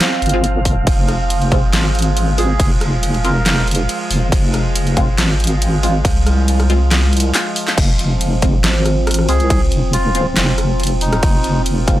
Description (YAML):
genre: deep dubstep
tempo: 139 BPM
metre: 4/4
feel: half-time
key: F minor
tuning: A4 = 442 Hz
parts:
  - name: overtone-sweeping drone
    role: sustained chords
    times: 0.0-12.0 s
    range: F3 to C4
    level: -23 LUFS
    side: right 1 dB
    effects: chorus, built-in reverb
  - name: dubstep drum kit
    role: drums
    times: 0.0-12.0 s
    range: crash cymbal, handclaps, hi-hat, rim click, snare drum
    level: -20 LUFS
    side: equal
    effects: overdrive
  - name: wind-like tuned noise texture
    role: texture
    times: 0.0-7.8 s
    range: F5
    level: -27 LUFS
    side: right 4 dB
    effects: built-in reverb
  - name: deep soft wobble bass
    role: bass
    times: 0.2-12.0 s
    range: F1 to C2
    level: -16 LUFS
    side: equal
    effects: chorus, tube saturation
  - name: filtered dub chord stab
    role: stabs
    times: 0.3-12.0 s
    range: Ab3 to F4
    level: -26 LUFS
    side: left 1 dB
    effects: phaser, lush chorus, dub echo
  - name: electronic kick drum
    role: drums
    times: 0.7-12.0 s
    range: none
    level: -15 LUFS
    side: equal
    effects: overdrive
  - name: melodica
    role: melody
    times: 2.4-3.7, 9.3-11.6 s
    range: Eb4 to Bb4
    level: -24 LUFS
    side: right 1 dB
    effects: dub echo
room: little or no reverb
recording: dry, gritty hardware recording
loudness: -13 LUFS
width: side -14 dB against mid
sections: 0.0-7.8 A section; 7.8-12.0 A section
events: drop 0.0-7.8, 7.8-12.0; break 7.3-7.8; drum fill 7.3-7.8; band accent 7.7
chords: 0.0 Fm